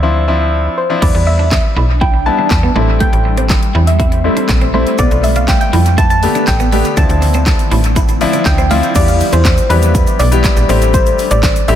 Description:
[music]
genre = dance-pop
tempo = 121 BPM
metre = 4/4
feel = straight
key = unclear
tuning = A4 = 439 Hz
[part]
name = clear concert grand piano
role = accompaniment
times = 0.0-11.8 s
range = F3 to G4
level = -18 LUFS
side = left 4 dB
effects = sidechain pumping, dub echo
[part]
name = slap-like FM bass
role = bass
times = 0.0-11.8 s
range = A1 to F2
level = -13 LUFS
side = equal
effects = sidechain pumping
[part]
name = soft round pluck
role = melody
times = 0.8-11.8 s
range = B4 to A5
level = -18 LUFS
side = equal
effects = chorus, dub echo
[part]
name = granular cloud pad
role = sustained chords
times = 1.9-11.8 s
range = D3 to E4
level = -21 LUFS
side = equal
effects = built-in reverb, sidechain pumping
[part]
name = twelve-string electric guitar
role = riff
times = 1.0-8.8 s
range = A3 to E4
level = -22 LUFS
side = right 4 dB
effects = analog chorus, dub echo
[part]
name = pop drum kit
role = drums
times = 1.0-11.8 s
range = crash cymbal, handclaps, hi-hat, kick drum, shaker, snare drum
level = -15 LUFS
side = equal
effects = dub echo
[part]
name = tube shaker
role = percussion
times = 5.0-11.7 s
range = none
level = -32 LUFS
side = right 8 dB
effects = none
[sound]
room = digital ambience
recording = echo-heavy mix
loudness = -10 LUFS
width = side -10 dB against mid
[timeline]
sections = 0.0-1.0 A section; 1.0-9.0 B section; 9.0-11.8 C section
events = break 0.0-1.0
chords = 0.0 Dm9; 1.0 Em7; 2.8 Am7; 5.0 Bm7b5; 7.0 Dm9; 9.0 Em7; 10.7 Am7

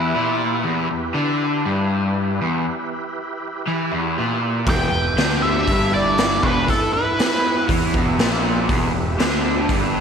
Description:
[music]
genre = blues rock power trio and southern rock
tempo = 119 BPM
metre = 4/4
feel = straight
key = E minor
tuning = A4 = 438 Hz
[part]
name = octave-fuzz lead guitar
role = melody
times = 0.0-0.3, 4.7-7.6 s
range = A4 to G5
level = -22 LUFS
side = equal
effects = wah, distortion, slapback echo
[part]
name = dark smooth lead guitar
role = second line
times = 0.0-0.3, 4.7-7.7 s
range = D4 to B4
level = -27 LUFS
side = right 3 dB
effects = overdrive, tape echo
[part]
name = overdriven tonewheel organ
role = sustained chords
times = 0.0-10.0 s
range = E4 to E5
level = -29 LUFS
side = right 2 dB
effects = slow rotary speaker, chorus vibrato
[part]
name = crunchy overdriven guitar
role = riff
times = 0.0-10.0 s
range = E2 to E3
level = -21 LUFS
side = left 1 dB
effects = none
[part]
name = fuzz fingered electric bass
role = bass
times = 4.7-10.0 s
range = E1 to E2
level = -24 LUFS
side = equal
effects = overdrive
[part]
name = raw garage drum kit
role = drums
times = 4.7-9.8 s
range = hi-hat, kick drum, snare drum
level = -21 LUFS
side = equal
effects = none
[sound]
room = wet lush hall reverb, RT60 1.7 s, small room ambience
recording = big arena sound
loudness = -17 LUFS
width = side -7 dB against mid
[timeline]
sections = 0.0-10.0 A section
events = none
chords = 0.0 Em

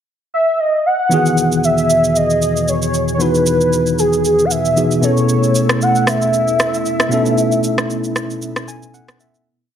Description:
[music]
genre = amapiano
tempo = 115 BPM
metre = 4/4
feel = swing 55% on 16ths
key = E major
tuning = A4 = 438 Hz
[part]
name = warm velvety synth lead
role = melody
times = 0.3-8.9 s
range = G#4 to F#5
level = -16 LUFS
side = right 1 dB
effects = chorus
[part]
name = tine electric piano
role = accompaniment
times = 1.1-9.5 s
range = B2 to G#5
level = -18 LUFS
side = left 1 dB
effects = fast stereo tremolo
[part]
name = glassy FM pad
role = sustained chords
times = 1.1-9.4 s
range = E2 to G#4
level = -21 LUFS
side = left 1 dB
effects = ensemble chorus, built-in reverb
[part]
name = electronic shaker and rim click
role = drums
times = 1.1-9.5 s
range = none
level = -21 LUFS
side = right 1 dB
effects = overdrive
[sound]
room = wet digital room reverb, RT60 1.0 s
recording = none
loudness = -13 LUFS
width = side -9 dB against mid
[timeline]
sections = 0.0-1.1 pickup bar; 1.1-9.5 breakdown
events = fade-out 7.4-9.5; tine electric piano fill 8.4-9.5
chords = 0.0 N.C.; 1.1 Emaj7; 5.0 B7sus4

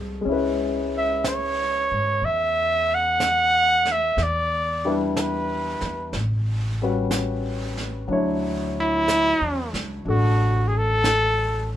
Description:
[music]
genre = jazz ballad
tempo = 61 BPM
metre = 4/4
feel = swing 69% on 8ths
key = unclear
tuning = A4 = 436 Hz
[part]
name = warm grand piano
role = accompaniment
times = 0.0-11.8 s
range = F#3 to C#5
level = -27 LUFS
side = left 3 dB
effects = none
[part]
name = upright bass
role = bass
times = 0.0-11.8 s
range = A1 to G#2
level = -27 LUFS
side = equal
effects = none
[part]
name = vintage brush drum kit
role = drums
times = 0.3-11.8 s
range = brushed snare drum, hi-hat, snare drum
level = -33 LUFS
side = right 2 dB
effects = none
[part]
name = clear trumpet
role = melody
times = 1.0-11.7 s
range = E4 to F#5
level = -21 LUFS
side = right 1 dB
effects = none
[sound]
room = moderate studio ambience, RT60 0.5 s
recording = minimal, uncompressed stereo recording, lossy compression artefacts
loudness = -20 LUFS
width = side -11 dB against mid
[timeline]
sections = 0.0-11.8 A section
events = none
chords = 0.3 C#m7; 4.2 Em7; 6.1 A13; 8.1 Dmaj9

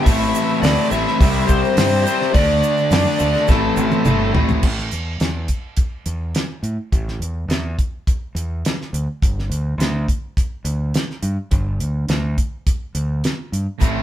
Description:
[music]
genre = classic rock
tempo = 105 BPM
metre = 4/4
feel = straight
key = A dorian, A minor from 4.6 s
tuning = A4 = 440 Hz
[part]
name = bluesy overdriven lead guitar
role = melody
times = 0.0-4.3 s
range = A4 to E5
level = -21 LUFS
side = left 1 dB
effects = distortion
[part]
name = octave-fuzz lead guitar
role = second line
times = 0.0-4.3 s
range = A3 to A4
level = -29 LUFS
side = equal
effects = none
[part]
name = crunchy overdriven guitar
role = riff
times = 0.0-4.6, 13.8-14.0 s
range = A2 to F#4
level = -23 LUFS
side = right 6 dB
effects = none
[part]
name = overdriven semi-hollow guitar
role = riff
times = 0.0-4.6, 13.8-14.0 s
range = A2 to D4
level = -20 LUFS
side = left 5 dB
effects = none
[part]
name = growling fingered electric bass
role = bass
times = 0.1-14.0 s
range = G1 to A2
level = -22 LUFS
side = equal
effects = overdrive
[part]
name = damped 70s drum kit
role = drums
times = 0.1-13.9 s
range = crash cymbal, hi-hat, kick drum, snare drum, toms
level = -19 LUFS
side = equal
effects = none
[part]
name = egg shaker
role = percussion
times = 0.1-4.6, 13.8-13.9 s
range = none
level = -36 LUFS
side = right 8 dB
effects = none
[sound]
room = moderate studio reverb, RT60 0.8 s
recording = band playing live in one room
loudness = -17 LUFS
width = side -11 dB against mid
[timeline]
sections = 0.0-4.6 A section; 4.6-14.0 B section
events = drum fill 3.5-4.6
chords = 0.1 Am; 1.2 C; 2.3 D; 3.5 Am; 4.6 A5; 9.2 G5

